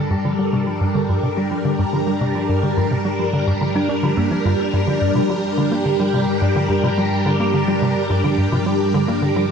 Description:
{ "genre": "ambient, sequencer-driven space music", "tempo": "107 BPM", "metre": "4/4", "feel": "straight", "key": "G minor", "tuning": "A4 = 441 Hz", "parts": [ { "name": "phased string machine", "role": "sustained chords", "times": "0.0-9.5 s", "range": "G3 to Bb4", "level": "-19 LUFS", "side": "equal", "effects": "ensemble chorus, phaser, shimmer reverb" }, { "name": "tight sequencer bass", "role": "riff", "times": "0.0-9.5 s", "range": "G2 to D4", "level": "-21 LUFS", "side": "equal", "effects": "ping-pong delay" }, { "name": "analog drone", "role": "bass", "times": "0.0-9.5 s", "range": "G2", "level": "-28 LUFS", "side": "equal", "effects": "chorus" }, { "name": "thumb-piano-like synth pluck", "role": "arpeggios", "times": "0.1-9.5 s", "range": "F3 to F4", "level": "-28 LUFS", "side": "right 1 dB", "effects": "chorus, auto-pan, ping-pong delay" } ], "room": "wet huge ambient reverb, RT60 8.1 s", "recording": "cassette tape", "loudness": "-16 LUFS", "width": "side -6 dB against mid", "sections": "0.0-9.5 A section", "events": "filter sweep on analog synth bass 0.0-9.5", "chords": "0.0 Gm7", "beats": "| 0.11 0.67 1.23 1.79 | 2.35 2.91 3.47 4.03 | 4.59 5.16 5.72 6.28 | 6.84 7.40 7.96 8.52 | 9.08" }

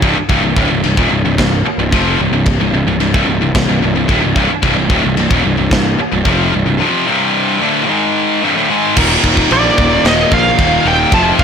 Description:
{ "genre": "heavy metal", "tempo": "111 BPM", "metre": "4/4", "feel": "straight", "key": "C minor", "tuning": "A4 = 441 Hz", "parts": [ { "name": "high-gain distorted guitar", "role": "riff", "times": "0.0-11.4 s", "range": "C2 to Ab3", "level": "-16 LUFS", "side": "left 13 dB", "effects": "distortion" }, { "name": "scooped high-gain guitar", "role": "riff", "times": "0.0-11.4 s", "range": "C2 to Ab3", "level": "-17 LUFS", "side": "right 14 dB", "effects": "distortion" }, { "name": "fuzz picked electric bass", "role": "bass", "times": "0.0-11.4 s", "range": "C1 to Bb1", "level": "-16 LUFS", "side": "equal", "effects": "overdrive" }, { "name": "tight metal drum kit", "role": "drums", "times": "0.0-11.4 s", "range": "china cymbal, crash cymbal, kick drum, snare drum", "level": "-16 LUFS", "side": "equal", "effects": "soft clipping on kick" }, { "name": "high-gain lead guitar", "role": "melody", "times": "9.5-11.4 s", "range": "D5 to A5", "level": "-13 LUFS", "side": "right 3 dB", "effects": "distortion" } ], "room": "studio reverb", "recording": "blown-out, overdriven recording, overdrive", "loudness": "-10 LUFS", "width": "side -7 dB against mid", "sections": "0.0-9.0 A section; 9.0-11.4 B section", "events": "none", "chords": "0.0 C5; 7.9 Ab5; 8.4 Cm; 9.0 Eb5", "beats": "| 0.30 0.84 1.38 1.93 | 2.47 3.01 3.55 4.09 | 4.63 5.18 5.72 6.26 | 6.80 7.34 7.89 8.43 | 8.97 9.51 10.05 10.59 | 11.13" }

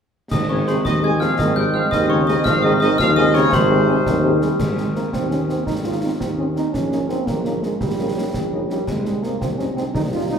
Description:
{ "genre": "military-style march for wind band", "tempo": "112 BPM (dotted quarters)", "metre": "6/8", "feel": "straight", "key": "Ab major", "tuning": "A4 = 437 Hz", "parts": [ { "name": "dark trumpet section", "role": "melody", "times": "0.3-10.4 s", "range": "C5 to Ab5", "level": "-25 LUFS", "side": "equal", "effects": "none" }, { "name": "clear euphonium", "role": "second line", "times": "0.3-10.4 s", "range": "C3 to F4", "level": "-23 LUFS", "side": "right 2 dB", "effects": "none" }, { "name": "glockenspiel with soft plastic mallets", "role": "second line", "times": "0.3-4.4 s", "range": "C6 to Ab6", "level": "-24 LUFS", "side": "left 4 dB", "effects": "none" }, { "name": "mellow trombone section", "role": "sustained chords", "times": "0.3-4.4 s", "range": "Ab3 to C4", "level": "-27 LUFS", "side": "right 2 dB", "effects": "none" }, { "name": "warm tuba", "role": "bass", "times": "0.3-10.4 s", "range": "Ab1 to Eb2", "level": "-22 LUFS", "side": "equal", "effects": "none" }, { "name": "concert snare drum, clash cymbals and concert bass drum", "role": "drums", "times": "0.3-10.4 s", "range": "none", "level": "-26 LUFS", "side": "equal", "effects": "none" }, { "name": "dark French horn section", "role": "accompaniment", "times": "0.5-10.4 s", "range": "Ab3 to Ab4", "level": "-26 LUFS", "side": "left 2 dB", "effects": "none" } ], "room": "wet large studio reverb, RT60 1.4 s", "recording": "heard from further back in the room", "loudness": "-17 LUFS", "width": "side -7 dB against mid", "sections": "0.3-4.6 A section; 4.6-10.4 B section", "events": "none", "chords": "0.3 Ab; 6.7 Eb7/Bb; 8.9 Ab/C", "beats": "| 0.31 0.85 | 1.38 1.92 | 2.45 2.99 | 3.52 4.06 | 4.59 5.13 | 5.66 6.20 | 6.73 7.27 | 7.80 8.34 | 8.87 9.41 | 9.94" }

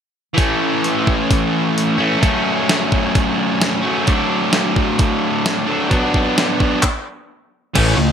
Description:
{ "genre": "indie rock", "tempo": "130 BPM", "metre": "4/4", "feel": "straight", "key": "A major", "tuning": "A4 = 440 Hz", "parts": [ { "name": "fuzz guitar", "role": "riff", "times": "0.3-8.1 s", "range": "E3 to D4", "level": "-16 LUFS", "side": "equal", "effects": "distortion" }, { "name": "crisp 8-bit digital drum machine", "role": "drums", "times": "0.4-7.9 s", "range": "crash cymbal, handclaps, hi-hat, kick drum, snare drum", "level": "-18 LUFS", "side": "equal", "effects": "gated reverb" }, { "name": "growling picked electric bass", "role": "bass", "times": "7.8-8.1 s", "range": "A1 to C#2", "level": "-16 LUFS", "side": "equal", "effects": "overdrive" } ], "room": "light reverb", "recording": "bright 1980s-style digital production", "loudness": "-15 LUFS", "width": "side -8 dB against mid", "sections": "0.4-7.8 A section", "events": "stop 6.8-7.8", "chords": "0.4 A; 2.2 F#m; 4.1 D/F#; 5.9 Bm", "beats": "| 0.38 0.84 1.30 1.76 | 2.23 2.69 3.15 3.61 | 4.07 4.53 4.99 5.45 | 5.91 6.37 6.83 7.29 | 7.75" }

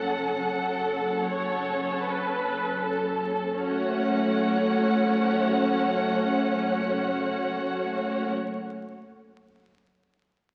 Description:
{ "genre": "classical, slow romantic movement for string orchestra", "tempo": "39 BPM", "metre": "3/4", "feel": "rubato", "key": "F# minor", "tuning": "A4 = 440 Hz", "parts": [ { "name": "rich chamber violin section", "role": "melody", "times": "0.0-8.3 s", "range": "F#5", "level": "-35 LUFS", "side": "equal", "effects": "none" }, { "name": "rich chamber violin section", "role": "second line", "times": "0.0-8.3 s", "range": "C#4 to C#5", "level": "-32 LUFS", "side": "equal", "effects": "none" }, { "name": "rich symphonic viola section", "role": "accompaniment", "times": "0.0-8.3 s", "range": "A3 to C#5", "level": "-29 LUFS", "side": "equal", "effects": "none" }, { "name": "rich chamber cello section", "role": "bass", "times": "0.0-8.3 s", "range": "F#2", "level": "-42 LUFS", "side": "equal", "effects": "none" }, { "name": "warm studio double bass section", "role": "bass", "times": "0.0-8.3 s", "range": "F#1", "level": "-40 LUFS", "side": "equal", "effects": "none" } ], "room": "wet scoring stage reverb, RT60 2.0 s", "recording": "very old 78 rpm record, vinyl crackle", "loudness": "-26 LUFS", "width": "mono", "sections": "0.0-3.7 A section; 3.7-8.3 B section", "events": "slowing down 0.0-3.7", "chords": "0.0 F#m", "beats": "0.55 2.06 | 3.66 5.20 6.76" }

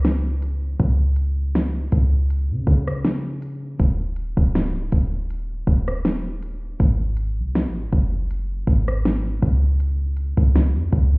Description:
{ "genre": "contemporary R&B", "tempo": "80 BPM", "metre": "4/4", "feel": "swing 54% on 16ths", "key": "unclear", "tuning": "A4 = 440 Hz", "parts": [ { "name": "soft 808-style bass", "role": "bass", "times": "0.0-11.2 s", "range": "Db1 to Db3", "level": "-21 LUFS", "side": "equal", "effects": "none" }, { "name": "smooth R&B drum kit", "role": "drums", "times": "0.0-11.1 s", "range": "hi-hat, kick drum, rim click, snare drum", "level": "-20 LUFS", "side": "equal", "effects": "none" } ], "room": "digital ambience", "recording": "heard muffled through a wall, stone room reverb, EQ", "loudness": "-19 LUFS", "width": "side -29 dB against mid", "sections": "0.0-11.2 A section", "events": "none", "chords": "none", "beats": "0.05 | 0.80 1.55 2.30 3.05 | 3.80 4.55 5.30 6.05 | 6.80 7.55 8.30 9.05 | 9.80 10.55" }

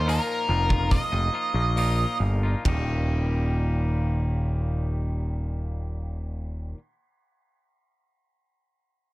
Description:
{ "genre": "quiet-loud alternative rock", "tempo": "67-73 BPM", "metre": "4/4", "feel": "straight", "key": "Eb major", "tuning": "A4 = 440 Hz", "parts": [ { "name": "octave-fuzz lead guitar", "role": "melody", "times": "0.0-2.2 s", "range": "Bb4 to Eb5", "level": "-26 LUFS", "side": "equal", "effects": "distortion, slapback echo" }, { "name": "twangy electric guitar", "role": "arpeggios", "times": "0.0-6.8 s", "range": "Eb2 to F4", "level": "-33 LUFS", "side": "left 2 dB", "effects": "none" }, { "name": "overdriven picked electric bass", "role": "bass", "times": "0.0-6.7 s", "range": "Eb1 to Eb2", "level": "-25 LUFS", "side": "equal", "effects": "none" }, { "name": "loose indie drum kit", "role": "drums", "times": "0.1-2.9 s", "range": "hi-hat, kick drum, ride cymbal, toms", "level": "-28 LUFS", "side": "equal", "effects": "none" } ], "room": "little or no reverb", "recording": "none", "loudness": "-23 LUFS", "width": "side -18 dB against mid", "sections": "0.0-2.7 A section; 2.7-6.3 B section", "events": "slowing down 0.0-2.7; lead electric guitar solo 0.0-2.7", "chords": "0.0 Bbsus4; 2.7 Eb", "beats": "0.07 0.91 1.77 | 2.65 3.55 4.45 5.35" }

